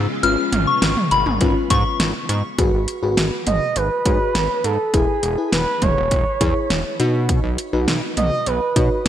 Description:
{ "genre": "synth-pop", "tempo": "102 BPM", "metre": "4/4", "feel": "straight", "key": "unclear", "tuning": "A4 = 437 Hz", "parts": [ { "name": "string machine, full ensemble", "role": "sustained chords", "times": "0.0-2.5 s", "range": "C#3 to E#4", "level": "-30 LUFS", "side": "equal", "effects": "ensemble chorus, shimmer reverb" }, { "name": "chorused synth bass", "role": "bass", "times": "0.0-9.1 s", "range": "E1 to B2", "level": "-22 LUFS", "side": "equal", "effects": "none" }, { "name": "soft synth bell", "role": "second line", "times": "0.2-1.9 s", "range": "B5 to E#6", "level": "-21 LUFS", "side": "left 3 dB", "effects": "chorus, shimmer reverb, digital delay" }, { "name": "mellow FM electric piano", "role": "accompaniment", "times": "0.2-9.1 s", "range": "C#4 to C#5", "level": "-24 LUFS", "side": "left 3 dB", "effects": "chorus, tremolo, shimmer reverb" }, { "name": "pop drum kit", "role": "drums", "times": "0.2-9.1 s", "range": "hi-hat, kick drum, snare drum, toms", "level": "-21 LUFS", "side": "right 1 dB", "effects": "gated reverb" }, { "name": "expressive synth lead", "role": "melody", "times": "3.5-9.1 s", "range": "G#4 to D#5", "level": "-21 LUFS", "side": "right 2 dB", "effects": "chorus, shimmer reverb" } ], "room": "moderate lush hall reverb, RT60 1.9 s, digital ambience", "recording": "bright 1980s-style digital production", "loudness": "-17 LUFS", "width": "side -10 dB against mid", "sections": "0.0-2.6 A section; 2.6-9.1 B section", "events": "none", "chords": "0.0 C#7/G#; 2.6 G#m7; 4.9 E; 7.0 B" }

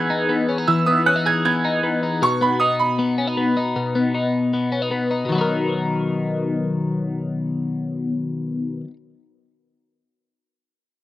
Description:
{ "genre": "indie pop", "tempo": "156 BPM", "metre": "4/4", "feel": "straight", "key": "B major", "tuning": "A4 = 440 Hz", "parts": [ { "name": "bright upright piano", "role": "melody", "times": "0.0-4.9 s", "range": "B5 to G#6", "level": "-21 LUFS", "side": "right 4 dB", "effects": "none" }, { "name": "twelve-string electric guitar", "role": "arpeggios", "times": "0.0-9.0 s", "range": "B2 to A#4", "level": "-20 LUFS", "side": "left 2 dB", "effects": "phaser" } ], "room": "light reverb", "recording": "rough home demo mix", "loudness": "-19 LUFS", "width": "side -14 dB against mid", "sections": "0.0-5.3 A section; 5.3-8.4 B section", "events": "none", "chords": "0.0 Emaj7; 2.2 B; 5.3 Bmaj7" }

